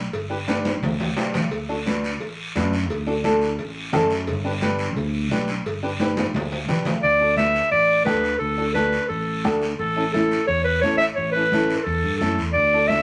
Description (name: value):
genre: latin, cumbia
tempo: 174 BPM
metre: 4/4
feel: straight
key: D major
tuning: A4 = 440 Hz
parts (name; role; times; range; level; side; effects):
- fingered electric bass; bass; 0.0-13.0 s; G1 to G2; -30 LUFS; equal; none
- congas; percussion; 0.1-13.0 s; none; -30 LUFS; equal; none
- cowbell and timbales; percussion; 0.1-6.9 s; none; -31 LUFS; equal; none
- guiro; percussion; 0.1-13.0 s; none; -35 LUFS; equal; none
- flamenco guitar; accompaniment; 0.3-13.0 s; C#4 to B4; -28 LUFS; equal; none
- clear clarinet; melody; 7.0-13.0 s; A4 to E5; -22 LUFS; equal; none
room: wet studio reverb, RT60 0.6 s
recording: none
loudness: -22 LUFS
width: mono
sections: 0.0-7.0 A section; 7.0-13.0 B section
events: drum fill 0.5-1.5, 6.0-7.0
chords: 0.0 G; 1.5 D; 4.3 G; 7.0 D; 9.8 A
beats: | 0.14 0.48 0.83 1.17 | 1.52 1.86 2.21 2.55 | 2.90 3.24 3.59 3.93 | 4.28 4.62 4.97 5.31 | 5.66 6.00 6.35 6.69 | 7.04 7.38 7.73 8.07 | 8.42 8.76 9.11 9.45 | 9.80 10.14 10.48 10.83 | 11.18 11.52 11.87 12.21 | 12.55 12.90